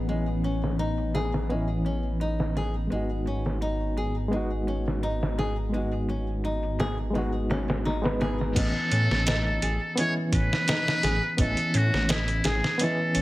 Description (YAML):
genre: trip hop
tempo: 85 BPM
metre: 4/4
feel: swing 54% on 16ths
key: unclear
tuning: A4 = 440 Hz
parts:
  - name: reed electric piano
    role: accompaniment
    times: 0.0-13.2 s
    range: E3 to B4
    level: -30 LUFS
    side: equal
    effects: fast tremolo, harmonic tremolo, vintage 12-bit sampler grit, tape echo
  - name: dark detuned saw bass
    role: bass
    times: 0.0-13.2 s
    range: G#1 to A2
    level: -29 LUFS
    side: equal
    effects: none
  - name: bowed-like drone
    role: texture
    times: 0.0-8.6 s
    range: B3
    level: -40 LUFS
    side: left 3 dB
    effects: none
  - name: nylon-string guitar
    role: arpeggios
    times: 0.1-13.2 s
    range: G#3 to D#5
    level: -33 LUFS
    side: left 1 dB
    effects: digital delay
  - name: trip hop sampler-style drum kit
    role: drums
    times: 0.1-13.2 s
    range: crash cymbal, hi-hat, kick drum, snare drum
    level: -29 LUFS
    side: equal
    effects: low-pass filter on hats, small room ambience, low-pass filter on snare, low-pass filter on kick, low-pass filter on cymbals
  - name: trumpet with metal mute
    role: melody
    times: 8.6-13.2 s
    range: E4 to C#5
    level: -28 LUFS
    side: equal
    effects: none
room: light reverb, digital ambience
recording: none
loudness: -24 LUFS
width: side -17 dB against mid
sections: 0.0-8.6 A section; 8.6-13.2 B section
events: none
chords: 0.0 Aadd9; 2.9 G#m7; 8.6 Aadd9